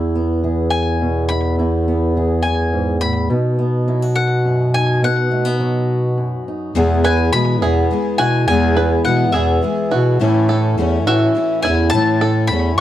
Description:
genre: folk.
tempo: 70 BPM (dotted quarters).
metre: 6/8.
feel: straight.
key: E major.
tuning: A4 = 440 Hz.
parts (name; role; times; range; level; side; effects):
fingerpicked swing-style acoustic guitar; accompaniment; 0.0-12.8 s; E2 to A4; -22 LUFS; right 1 dB; none.
mellow bass clarinet; bass; 0.0-12.8 s; E2 to B2; -17 LUFS; equal; none.
mandolin; melody; 0.7-12.8 s; E5 to B5; -21 LUFS; left 3 dB; slapback echo.
picked twelve-string acoustic guitar; accompaniment; 6.7-12.8 s; E2 to E4; -22 LUFS; left 7 dB; none.
bluegrass banjo; arpeggios; 7.0-12.8 s; E4 to B4; -24 LUFS; right 7 dB; none.
room: little or no reverb.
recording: dry, close 1970s-style studio recording.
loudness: -14 LUFS.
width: side -12 dB against mid.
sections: 0.0-6.8 A section; 6.8-12.8 B section.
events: none.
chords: 0.0 E; 3.3 B; 6.8 E; 10.2 A.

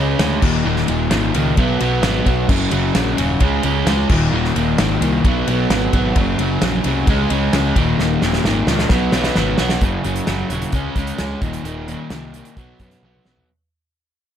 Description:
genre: indie rock.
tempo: 131 BPM.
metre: 4/4.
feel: straight.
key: unclear.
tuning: A4 = 440 Hz.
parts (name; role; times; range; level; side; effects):
crunchy overdriven guitar; riff; 0.0-13.5 s; Eb2 to Db4; -18 LUFS; equal; none.
fuzz picked electric bass; bass; 0.0-13.4 s; Eb1 to F#2; -21 LUFS; equal; overdrive.
loose indie drum kit; drums; 0.2-13.5 s; crash cymbal, hi-hat, kick drum, ride cymbal, snare drum, toms; -20 LUFS; equal; none.
room: light reverb.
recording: none.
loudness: -15 LUFS.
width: side -9 dB against mid.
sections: 0.0-9.8 A section; 9.8-13.5 B section.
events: drum fill 8.0-9.8, 13.0-13.5; fade-out 9.8-13.5.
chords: 0.4 Eb7sus4; 1.6 B5; 2.5 Gb; 3.4 Db5; 4.1 Ebsus4; 5.2 B5; 6.2 Gb; 7.1 Db5; 7.8 Eb7sus4; 8.9 B5; 9.8 Gb5; 10.7 Db5; 11.4 Eb5; 12.6 B5.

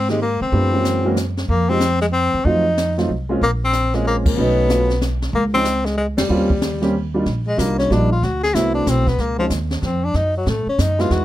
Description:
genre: jazz, small-group swing and bop.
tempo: 187 BPM.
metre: 3/4.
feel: swing 64% on 8ths.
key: unclear.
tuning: A4 = 440 Hz.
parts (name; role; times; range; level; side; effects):
breathy tenor saxophone; melody; 0.0-11.2 s; F3 to Ab4; -20 LUFS; left 2 dB; none.
upright bass; bass; 0.0-11.2 s; Bb1 to Db3; -21 LUFS; right 1 dB; none.
warm upright piano; accompaniment; 0.1-11.2 s; Eb3 to G4; -21 LUFS; right 2 dB; none.
jazz brush drum kit; drums; 0.1-11.2 s; brushed snare drum, crash cymbal, hi-hat, kick drum, ride cymbal, snare drum; -24 LUFS; equal; none.
room: light reverb.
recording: close, detailed microphones.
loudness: -16 LUFS.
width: side -14 dB against mid.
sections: 0.0-7.3 A section; 7.3-11.2 B section.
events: band accent 4.2, 6.1; tenor saxophone solo 7.3-11.2.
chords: 0.0 Abmaj9; 0.5 Gb9; 1.5 F5; 2.4 F7b9; 3.4 Bbm9; 4.4 B9; 5.3 Dbmaj7(no3); 6.3 Eb13; 7.3 Ebmaj9; 8.2 D13; 9.2 Dbmaj7; 10.1 B7 (rootless).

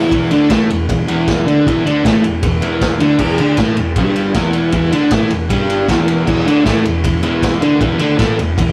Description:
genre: garage rock duo or trio.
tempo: 156 BPM.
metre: 4/4.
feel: straight.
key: unclear.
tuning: A4 = 441 Hz.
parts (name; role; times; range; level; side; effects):
crunchy overdriven guitar; riff; 0.0-8.7 s; E2 to E4; -16 LUFS; equal; none.
fuzz picked electric bass; bass; 0.0-8.7 s; E1 to D2; -26 LUFS; equal; overdrive.
vintage drum kit; drums; 0.1-8.7 s; crash cymbal, kick drum, ride cymbal, snare drum; -20 LUFS; equal; none.
room: moderate studio ambience, RT60 0.5 s.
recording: rough rehearsal-room recording.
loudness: -14 LUFS.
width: mono.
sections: 0.1-8.7 A section.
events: none.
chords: 0.1 Em7.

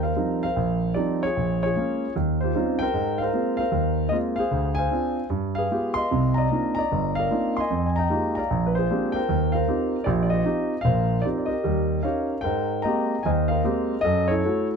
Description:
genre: solo jazz.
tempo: 151 BPM.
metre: 4/4.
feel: swing 67% on 8ths, rubato.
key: Eb major.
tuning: A4 = 435 Hz.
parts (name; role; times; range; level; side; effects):
warm concert grand piano; solo; 0.0-14.8 s; G1 to C6; -21 LUFS; equal; none.
room: light reverb.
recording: close, detailed microphones.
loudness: -21 LUFS.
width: side -6 dB against mid.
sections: 0.0-12.4 A section; 12.4-14.8 B section.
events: none.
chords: 0.0 Eb69; 1.4 Bbm7; 2.2 Eb13; 2.9 Ab69; 4.5 Dm7b5; 5.3 G7b9; 6.1 Cm11; 7.7 Fm11; 8.5 Bb13; 9.3 Eb69; 11.6 Eb7; 12.4 Abmaj9; 14.1 Gbm7.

